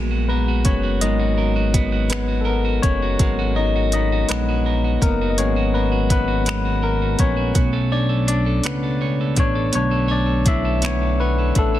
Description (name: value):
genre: slow six-eight R&B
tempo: 55 BPM (dotted quarters)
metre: 6/8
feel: straight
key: unclear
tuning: A4 = 439 Hz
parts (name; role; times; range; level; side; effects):
- electric guitar at the edge of break-up; second line; 0.0-11.8 s; G#3 to C#5; -25 LUFS; right 9 dB; none
- barky tine electric piano; accompaniment; 0.0-11.8 s; B2 to E5; -22 LUFS; left 4 dB; none
- smooth synth bass; bass; 0.0-11.8 s; F#1 to C#2; -21 LUFS; equal; none
- smooth R&B drum kit; drums; 0.6-11.7 s; finger snaps, hi-hat, kick drum; -21 LUFS; equal; soft clipping on snare
room: digital ambience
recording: dense, heavily limited modern master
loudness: -17 LUFS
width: side -13 dB against mid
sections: 0.0-11.8 A section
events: tine electric piano solo 0.0-11.8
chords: 0.0 G#m9; 7.6 Bm9